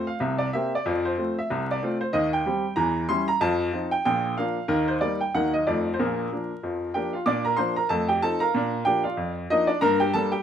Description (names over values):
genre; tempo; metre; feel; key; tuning
jazz, stride piano; 187 BPM; 4/4; swing 58% on 8ths; Bb major; A4 = 440 Hz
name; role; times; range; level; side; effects
bright baby grand piano; solo; 0.0-10.4 s; Bb1 to D6; -22 LUFS; equal; none
room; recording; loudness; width
moderate club reverb, RT60 0.6 s; minimal, uncompressed stereo recording, vinyl crackle; -22 LUFS; side -9 dB against mid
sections
0.0-7.3 A section; 7.3-10.4 B section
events
none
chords
0.2 C5; 0.9 F; 2.1 Cm/Eb; 2.8 Edim7; 3.4 F7; 4.1 Bb; 4.7 Eb; 5.3 Ebm; 5.7 F7; 6.0 Bb; 7.9 F7; 8.5 Bb; 9.8 Gm